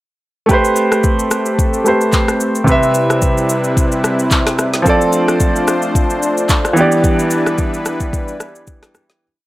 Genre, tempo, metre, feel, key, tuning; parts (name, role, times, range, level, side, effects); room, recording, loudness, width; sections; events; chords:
amapiano; 110 BPM; 4/4; swing 55% on 16ths; E phrygian; A4 = 440 Hz
clear grand piano; accompaniment; 0.5-9.2 s; C3 to E5; -15 LUFS; right 1 dB
warm analog pad; sustained chords; 0.5-9.2 s; G3 to C5; -19 LUFS; left 1 dB; chorus, sidechain pumping
afro-pop drum kit; drums; 0.5-9.2 s; handclaps, kick drum, rim click, shaker, snare drum; -16 LUFS; equal
digital ambience; dry, gritty hardware recording, transformer saturation; -12 LUFS; side -16 dB against mid
0.5-9.2 groove
fade-out 7.0-9.2
0.5 Am9; 2.7 Cmaj7; 4.9 F6; 6.8 Em7